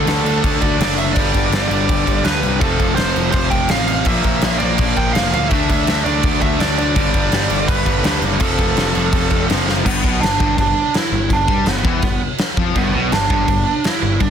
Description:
punk rock; 166 BPM; 4/4; straight; A4 = 440 Hz
bluesy overdriven lead guitar; melody; 0.0-14.3 s; B3 to G5; -21 LUFS; right 3 dB; distortion
distorted electric guitar; riff; 0.0-14.3 s; F2 to D4; -24 LUFS; left 13 dB; distortion
fuzz guitar; riff; 0.0-14.3 s; F2 to D4; -24 LUFS; left 1 dB; distortion
overdriven electric guitar; riff; 0.0-9.9, 12.8-14.3 s; F2 to D4; -23 LUFS; right 14 dB
fuzz picked electric bass; bass; 0.0-14.3 s; F1 to G2; -22 LUFS; equal; overdrive
big rock drum kit; drums; 0.1-14.3 s; crash cymbal, kick drum, snare drum; -19 LUFS; equal
little or no reverb; dense, heavily limited modern master; -14 LUFS; side -8 dB against mid
0.0-9.9 A section; 9.9-14.3 B section
drum fill 9.7
0.0 D; 1.2 G; 2.6 F; 4.1 Bb; 5.5 D5; 7.0 G; 8.4 F; 9.9 G

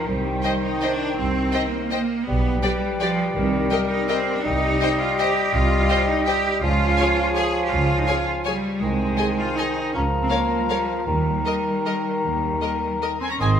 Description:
classical; 147-179 BPM; 3/4; rubato; A4 = 441 Hz
mellow clarinet; second line; 0.0-13.6 s; Ab4 to Eb5; -30 LUFS; left 4 dB
mellow concert flute; second line; 0.0-13.6 s; G5 to Db6; -29 LUFS; left 3 dB
mellow bassoon; accompaniment; 0.0-13.6 s; Eb3 to G3; -27 LUFS; equal
bright studio cello section; bass; 0.0-13.6 s; Eb3 to Ab4; -25 LUFS; right 2 dB
rich studio double bass section; bass; 0.1-13.6 s; Ab1 to Eb2; -25 LUFS; right 2 dB
rich studio violin section; melody; 0.4-13.1 s; Eb5 to Ab5; -33 LUFS; left 4 dB
warm studio violin section; second line; 0.4-13.5 s; Bb4 to Bb5; -31 LUFS; left 3 dB
warm studio viola section; accompaniment; 0.5-13.1 s; G4 to C5; -32 LUFS; equal
clear oboe; second line; 13.4-13.6 s; Eb5; -25 LUFS; right 2 dB
moderate scoring stage reverb, RT60 1.7 s; -19 LUFS; side -8 dB against mid
0.0-13.4 A section
0.1 Cm; 2.3 G/B; 3.4 Cm7; 4.4 Cm; 6.6 Db; 8.8 Ab/C; 9.9 Bbm/Db; 11.1 Eb

